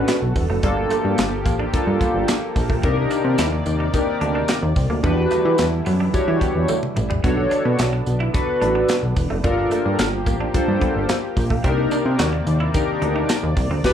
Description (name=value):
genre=early-eighties boogie funk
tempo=109 BPM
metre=4/4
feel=straight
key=unclear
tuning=A4 = 441 Hz
part: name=chorused polysynth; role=accompaniment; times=0.0-13.9 s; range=Bb3 to C#5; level=-21 LUFS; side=left 2 dB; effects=slapback echo
part: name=lush unison pad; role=sustained chords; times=0.0-13.9 s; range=C3 to D5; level=-26 LUFS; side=equal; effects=chorus
part: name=semi-hollow electric guitar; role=riff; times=0.0-13.8 s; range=G3 to F#4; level=-30 LUFS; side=right 4 dB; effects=analog chorus, slapback echo
part: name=plucky analog bass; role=bass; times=0.0-13.9 s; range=E1 to E3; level=-22 LUFS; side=equal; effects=none
part: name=tight funk drum kit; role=drums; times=0.1-13.9 s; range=crash cymbal, handclaps, hi-hat, kick drum, snare drum, toms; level=-23 LUFS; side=equal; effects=none
part: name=tambourine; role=percussion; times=0.1-13.7 s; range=none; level=-38 LUFS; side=right 2 dB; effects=none
room=light reverb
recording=live gig heard through the venue's PA, club reverb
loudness=-17 LUFS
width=side -9 dB against mid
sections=0.0-13.9 A section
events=drum fill 6.7-7.2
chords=0.0 Bm9; 0.6 Gm9; 2.8 Cm9; 5.0 Em9; 7.2 Bm9; 9.4 Gm9; 11.6 Cm9